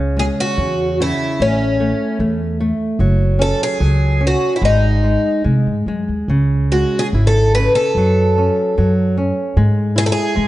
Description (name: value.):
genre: fado-style ballad.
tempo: 74 BPM.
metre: 2/4.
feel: rubato.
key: C# minor.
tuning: A4 = 440 Hz.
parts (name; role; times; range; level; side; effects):
flamenco guitar; accompaniment; 0.0-10.5 s; C#3 to E4; -20 LUFS; equal; none.
upright bass; bass; 0.0-10.5 s; F#1 to B#2; -16 LUFS; equal; none.
picked twelve-string acoustic guitar; melody; 0.2-10.5 s; C#4 to B4; -18 LUFS; equal; none.
room: light reverb.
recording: dark, warm production, nothing above 11.0 kHz.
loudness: -14 LUFS.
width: side -15 dB against mid.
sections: 0.0-10.5 A section.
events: none.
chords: 0.0 C#m; 1.4 A; 3.0 F#5; 4.6 G#5; 6.3 C#m; 7.9 F#m; 9.6 E/G#.